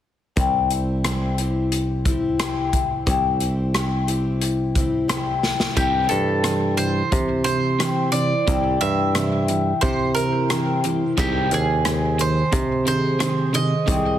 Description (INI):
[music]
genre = folk rock and heartland rock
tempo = 89 BPM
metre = 4/4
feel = straight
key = unclear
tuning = A4 = 440 Hz
[part]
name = picked twelve-string acoustic guitar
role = accompaniment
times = 0.4-14.2 s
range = C3 to Ab4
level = -25 LUFS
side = left 5 dB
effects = none
[part]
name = picked electric bass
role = bass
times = 0.4-14.2 s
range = C2 to C3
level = -23 LUFS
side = equal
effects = none
[part]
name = natural country drum kit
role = drums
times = 0.4-14.0 s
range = hi-hat, kick drum, rim click, snare drum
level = -25 LUFS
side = equal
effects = none
[part]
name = bowl-back mandolin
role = melody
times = 5.8-14.2 s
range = G4 to E5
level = -24 LUFS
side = right 4 dB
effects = analog delay
[part]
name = crunchy overdriven guitar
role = riff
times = 5.8-14.2 s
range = C3 to Ab3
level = -26 LUFS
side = right 2 dB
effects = none
[sound]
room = light reverb, small room ambience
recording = heavily compressed radio sound, multiband compression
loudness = -18 LUFS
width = side -11 dB against mid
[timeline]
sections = 0.4-5.8 A section; 5.8-14.2 B section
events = drum fill 5.4-5.8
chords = 0.4 C; 11.2 Ab/C